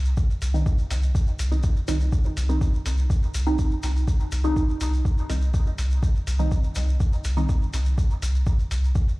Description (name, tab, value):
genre	dub techno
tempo	123 BPM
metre	4/4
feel	straight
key	C minor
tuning	A4 = 440 Hz
part	soft dub sub bass	bass	0.0-8.9 s	C2	-22 LUFS	equal	sidechain pumping
part	shekere	percussion	0.0-9.2 s	none	-40 LUFS	left 3 dB	none
part	electronic kick drum	drums	0.2-9.1 s	none	-22 LUFS	equal	overdrive, small room ambience
part	electronic hi-hat	drums	0.4-8.8 s	none	-38 LUFS	equal	small room ambience
part	filtered dub chord stab	stabs	0.5-8.3 s	Eb3 to Eb4	-30 LUFS	right 1 dB	phaser, sidechain pumping, dub echo
room	light reverb, digital ambience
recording	played on a big sound system in a bare room, large studio reverb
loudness	-21 LUFS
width	side -21 dB against mid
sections	0.0-9.2 A section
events	filter sweep on synth stab 0.0-9.2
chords	0.0 Cm